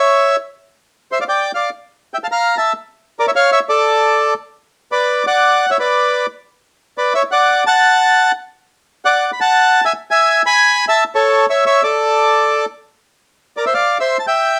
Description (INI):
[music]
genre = tango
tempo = 173 BPM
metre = 3/4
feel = rubato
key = D major from 4.7 s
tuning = A4 = 440 Hz
[part]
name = bandoneon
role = solo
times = 0.0-14.6 s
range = A4 to B5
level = -14 LUFS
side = equal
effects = none
[sound]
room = light reverb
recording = none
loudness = -15 LUFS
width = mono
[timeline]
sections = 0.0-4.7 A section; 4.7-13.0 B section; 13.0-14.6 A section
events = none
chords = 0.0 A (rootless); 0.6 Csus2; 1.6 Dmadd9; 2.6 A#dim; 3.7 N.C.; 4.7 D; 5.8 N.C.; 6.8 Bmadd9; 7.8 N.C.; 8.9 D6; 9.9 E; 11.0 A; 12.0 N.C.; 13.0 Bbadd9; 14.1 C